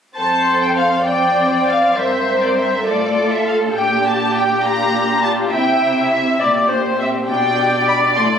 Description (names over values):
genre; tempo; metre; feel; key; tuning
quick classical-period movement for string orchestra; 68 BPM (dotted quarters); 6/8; straight; F major; A4 = 440 Hz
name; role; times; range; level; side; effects
warm symphonic violin section; melody; 0.2-8.2 s; D5 to C6; -18 LUFS; left 1 dB; none
rich chamber violin section; second line; 0.2-8.4 s; C4 to C5; -23 LUFS; equal; none
rich chamber viola section; accompaniment; 0.2-8.4 s; G4 to E5; -18 LUFS; left 1 dB; none
rich chamber cello section; bass; 0.2-8.4 s; F2 to C3; -23 LUFS; right 2 dB; none
room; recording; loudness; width
wet scoring stage reverb, RT60 1.4 s; recorded on a phone in the room, club reverb, compression; -14 LUFS; side -7 dB against mid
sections
0.2-8.4 A section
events
none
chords
0.2 F; 2.0 C7/G; 2.9 F/A; 3.8 Gm7/Bb; 5.5 C; 6.4 C7(no3)/Bb; 7.3 G/B